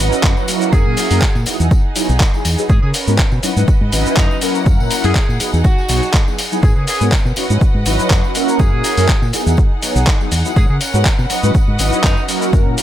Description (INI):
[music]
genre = filtered disco house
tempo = 122 BPM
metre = 4/4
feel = swing 54% on 16ths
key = unclear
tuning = A4 = 440 Hz
[part]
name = mellow synth brass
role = accompaniment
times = 0.0-12.8 s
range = F#3 to C#5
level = -20 LUFS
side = equal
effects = chorus, phaser, sidechain pumping
[part]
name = dark studio string section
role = sustained chords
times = 0.0-12.8 s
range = E3 to F#5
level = -24 LUFS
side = right 1 dB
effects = sidechain pumping
[part]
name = fingered electric bass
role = bass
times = 0.0-12.7 s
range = G#1 to C#3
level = -17 LUFS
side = equal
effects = tube saturation, sidechain pumping
[part]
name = dusty soul sampler-style drum kit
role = drums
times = 0.1-12.8 s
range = cabasa, handclaps, hi-hat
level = -20 LUFS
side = left 1 dB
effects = overdrive, sidechain pumping on hats, sidechain pumping on perc, sidechain pumping on cymbals
[part]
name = tambourine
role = percussion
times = 0.1-12.8 s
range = none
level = -31 LUFS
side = left 4 dB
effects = sidechain pumping on perc
[part]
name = electronic kick drum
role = drums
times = 0.2-12.6 s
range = none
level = -14 LUFS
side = equal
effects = none
[part]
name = bright horn section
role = melody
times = 0.7-12.2 s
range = D#4 to G#4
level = -24 LUFS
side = equal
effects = sidechain pumping
[sound]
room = digital ambience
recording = none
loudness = -12 LUFS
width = side -12 dB against mid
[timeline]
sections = 0.0-12.8 A section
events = none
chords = 0.0 C#m11/G#; 0.7 F#7; 1.5 Emaj9; 2.7 G#m11; 3.4 C#m11/G#; 4.7 F#7; 5.4 Emaj9; 6.6 G#m11; 7.4 C#m11/G#; 8.6 F#7; 9.3 Emaj9; 10.6 G#m11; 11.3 C#m11/G#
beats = 0.24 | 0.73 1.22 1.71 2.20 | 2.70 3.19 3.68 4.17 | 4.66 5.16 5.65 6.14 | 6.63 7.12 7.61 8.11 | 8.60 9.09 9.58 10.07 | 10.56 11.06 11.55 12.04 | 12.53